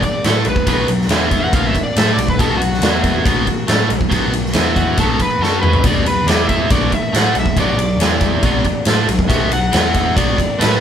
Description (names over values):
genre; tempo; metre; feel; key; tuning
blues rock power trio and southern rock; 139 BPM; 4/4; straight; B minor; A4 = 439 Hz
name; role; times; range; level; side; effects
overdriven slide guitar; melody; 0.0-10.8 s; F#4 to F#5; -21 LUFS; left 1 dB; none
distorted electric guitar; riff; 0.0-10.8 s; B2 to A4; -19 LUFS; right 1 dB; distortion
vintage muted picked electric bass; bass; 0.0-10.8 s; B1 to A2; -22 LUFS; equal; none
huge arena drum kit; drums; 0.0-10.7 s; kick drum, ride cymbal, snare drum, toms; -16 LUFS; equal; none
room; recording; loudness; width
light reverb; band playing live in one room; -13 LUFS; side -8 dB against mid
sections
0.0-10.8 A section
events
electric slide guitar solo 0.0-10.8; drum fill 5.4-5.8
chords
0.0 B5; 1.1 E5; 1.5 B5; 2.8 E5; 3.3 B5; 4.5 E5; 5.0 B5; 5.4 F#5; 5.8 Bm; 6.3 E5; 6.7 Bm; 8.0 E5; 8.4 Bm; 9.7 E5; 10.2 Bm